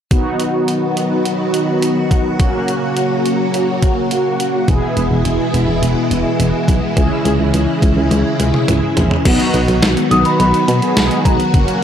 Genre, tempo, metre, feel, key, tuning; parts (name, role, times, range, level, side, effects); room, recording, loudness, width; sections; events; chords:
synth-pop; 105 BPM; 4/4; straight; B major; A4 = 441 Hz
mellow synth brass; accompaniment; 0.1-11.8 s; A#3 to G#4; -20 LUFS; right 1 dB; chorus
string machine, violins; sustained chords; 0.1-11.8 s; B2 to F#4; -17 LUFS; equal; ensemble chorus
clean 12-bit digital drum machine; drums; 0.1-11.8 s; crash cymbal, hi-hat, kick drum, snare drum, toms; -17 LUFS; equal
solid FM bass; bass; 4.7-11.7 s; E1 to B2; -16 LUFS; equal
celesta; melody; 10.1-11.8 s; A#5 to D#6; -18 LUFS; left 2 dB; analog delay
digital ambience; dry, gritty hardware recording; -13 LUFS; side -9 dB against mid
0.1-9.3 A section; 9.3-11.8 B section
drum fill 8.1-9.3
0.1 B; 2.4 F#; 4.7 E; 7.0 C#m; 9.3 B